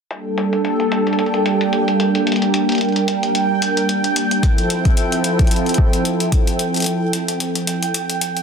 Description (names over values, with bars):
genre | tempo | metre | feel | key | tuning
IDM | 111 BPM | 4/4 | swing 56% on 16ths | G dorian | A4 = 439 Hz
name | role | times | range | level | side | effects
warm analog pad | sustained chords | 0.1-8.4 s | F3 to Bb4 | -18 LUFS | right 1 dB | chorus
electronic hi-hat | drums | 0.1-8.4 s | none | -24 LUFS | left 2 dB | low-pass filter on hats, low-pass filter on room
bubbling stepped-filter texture | texture | 0.7-8.4 s | G5 | -24 LUFS | right 4 dB | chorus, built-in reverb, sidechain pumping
electronic kick drum | drums | 4.4-6.4 s | none | -15 LUFS | equal | none
room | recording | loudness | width
moderate echo chamber reverb, RT60 2.1 s | dense, heavily limited modern master | -15 LUFS | side -6 dB against mid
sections
0.1-8.4 A section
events
break 6.6-8.4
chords
0.1 Gmadd9; 4.4 Fmaj7